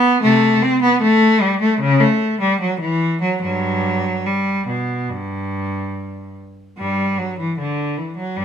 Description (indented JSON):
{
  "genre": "classical, baroque-style suite movement for unaccompanied cello",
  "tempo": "71-77 BPM",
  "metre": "4/4",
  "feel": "rubato",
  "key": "G major",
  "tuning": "A4 = 440 Hz",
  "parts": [
    { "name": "rich cello", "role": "solo", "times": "0.0-8.4 s", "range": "G2 to C4", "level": "-16 LUFS", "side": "equal", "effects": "none" }
  ],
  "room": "moderate stone room reverb, RT60 1.0 s",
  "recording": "minimal, uncompressed stereo recording",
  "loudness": "-16 LUFS",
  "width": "side -8 dB against mid",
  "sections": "0.0-6.8 A section; 6.8-8.4 B section",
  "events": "none",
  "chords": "none",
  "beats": "| 0.23 1.02 1.81 2.61 | 3.43 4.27 5.11 5.95 | 6.78 7.57 8.36"
}